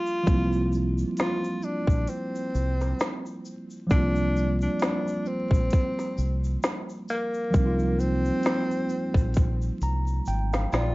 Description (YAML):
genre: lo-fi hip hop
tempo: 66 BPM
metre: 4/4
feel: swing 55% on 16ths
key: unclear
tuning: A4 = 438 Hz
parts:
  - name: breathy tenor saxophone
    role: melody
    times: 0.0-10.9 s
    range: Bb3 to F4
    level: -30 LUFS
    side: equal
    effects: none
  - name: mellow tine electric piano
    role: accompaniment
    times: 0.0-10.9 s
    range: F3 to Bb5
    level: -29 LUFS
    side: right 1 dB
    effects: medium stereo tremolo, cassette tape
  - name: tube shaker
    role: percussion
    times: 0.1-10.9 s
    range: none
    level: -53 LUFS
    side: left 4 dB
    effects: none
  - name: deep dub fingered electric bass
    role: bass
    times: 0.3-10.9 s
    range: Ab1 to C2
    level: -26 LUFS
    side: equal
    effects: none
  - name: organic electronic drum kit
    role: drums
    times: 0.3-10.9 s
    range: hi-hat, kick drum, shaker, snare drum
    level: -25 LUFS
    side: equal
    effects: overdrive
room: light reverb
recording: vinyl crackle, nothing above 7.6 kHz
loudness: -23 LUFS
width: side -21 dB against mid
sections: 0.0-10.9 A section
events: drum fill 9.4-10.9; tine electric piano fill 9.4-10.9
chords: 0.0 C9sus4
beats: | 0.27 1.18 2.09 3.00 | 3.90 4.81 5.72 6.63 | 7.54 8.45 9.36 10.27